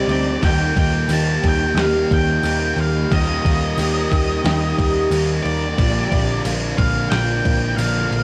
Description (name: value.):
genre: rock, shoegaze and dream pop.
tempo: 90 BPM.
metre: 4/4.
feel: straight.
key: unclear.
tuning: A4 = 440 Hz.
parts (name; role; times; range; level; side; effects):
octave-fuzz lead guitar; melody; 0.0-8.2 s; D5 to A5; -26 LUFS; equal; distortion, analog delay.
picked twelve-string acoustic guitar; arpeggios; 0.0-8.2 s; F4 to C5; -28 LUFS; equal; analog chorus, cassette tape, analog delay.
crunchy overdriven guitar; riff; 0.0-8.2 s; Bb2 to Eb4; -26 LUFS; equal; lush chorus, cassette tape.
electric guitar at the edge of break-up; riff; 0.0-8.2 s; Bb2 to D5; -32 LUFS; equal; none.
vintage muted picked electric bass; bass; 0.0-8.2 s; Bb1 to Eb2; -24 LUFS; equal; none.
clean 12-bit digital drum machine; drums; 0.1-8.2 s; crash cymbal, kick drum, snare drum; -25 LUFS; equal; cassette tape.
tambourine; percussion; 1.1-7.9 s; none; -40 LUFS; equal; none.
room: digital ambience.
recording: home recording on cassette.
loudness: -19 LUFS.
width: mono.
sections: 0.0-8.2 A section.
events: none.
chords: 0.4 Eb; 5.8 Bb6.